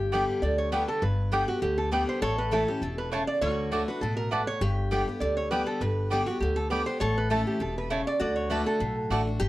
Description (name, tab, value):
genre	bluegrass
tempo	200 BPM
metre	4/4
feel	swing 54% on 8ths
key	D major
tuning	A4 = 439 Hz
part	lap resonator guitar	second line	0.0-9.5 s	F#4 to A4	-35 LUFS	left 2 dB	none
part	picked steel-string acoustic guitar	accompaniment	0.0-9.5 s	G2 to G4	-31 LUFS	left 1 dB	none
part	upright bass	bass	0.0-9.5 s	E1 to D2	-30 LUFS	equal	none
part	mandolin	stabs	0.1-9.2 s	A3 to A5	-29 LUFS	right 1 dB	none
part	lap resonator guitar	melody	0.4-8.9 s	F#4 to D5	-31 LUFS	right 2 dB	none
room	light reverb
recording	dark, warm production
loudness	-25 LUFS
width	side -16 dB against mid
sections	0.0-9.4 A section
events	none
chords	0.0 G; 2.2 A; 3.4 D; 4.6 G; 7.0 A; 8.2 D